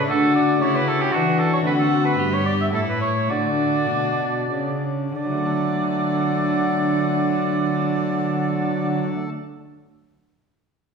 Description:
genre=classical, baroque-style sonata movement with continuo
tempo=91-116 BPM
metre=3/4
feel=straight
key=D major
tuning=A4 = 441 Hz
part: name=warm violin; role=melody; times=0.0-9.0 s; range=D4 to F#5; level=-28 LUFS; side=left 5 dB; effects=none
part: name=warm oboe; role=second line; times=0.0-9.0 s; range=F#4 to E5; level=-24 LUFS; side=right 3 dB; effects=none
part: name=pipe organ, cornet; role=accompaniment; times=0.0-9.3 s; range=G2 to A4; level=-24 LUFS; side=equal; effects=none
part: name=dark cello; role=bass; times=0.0-9.0 s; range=G2 to E3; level=-24 LUFS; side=equal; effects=none
room=wet recital hall reverb, RT60 1.3 s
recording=heard from further back in the room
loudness=-19 LUFS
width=side -5 dB against mid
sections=0.0-5.2 A section; 5.2-9.1 B section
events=slowing down 0.9-5.2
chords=0.1 D; 1.7 D7; 2.2 G; 2.7 A; 3.3 D

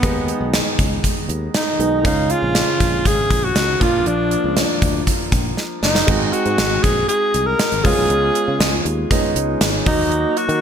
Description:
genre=1980s-style pop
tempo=119 BPM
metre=4/4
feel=straight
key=unclear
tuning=A4 = 439 Hz
part: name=bright alto saxophone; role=melody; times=0.0-10.6 s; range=Cb4 to Bb4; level=-20 LUFS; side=equal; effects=none
part: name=clear grand piano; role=accompaniment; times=0.0-10.6 s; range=Db3 to F5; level=-23 LUFS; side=right 2 dB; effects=none
part: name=sustaining fretless electric bass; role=bass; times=0.0-10.6 s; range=Gb1 to Eb3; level=-23 LUFS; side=left 1 dB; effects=none
part: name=gated 80s drum kit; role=drums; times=0.0-10.6 s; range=crash cymbal, hi-hat, kick drum, snare drum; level=-18 LUFS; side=equal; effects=none
room=light reverb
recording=none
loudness=-15 LUFS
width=side -8 dB against mid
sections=0.0-6.1 A section; 6.1-10.6 B section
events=drum fill 5.6-6.1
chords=0.0 Abm; 2.0 Db; 3.8 Bb; 6.1 Ab7; 7.8 Db7; 9.9 Ebm

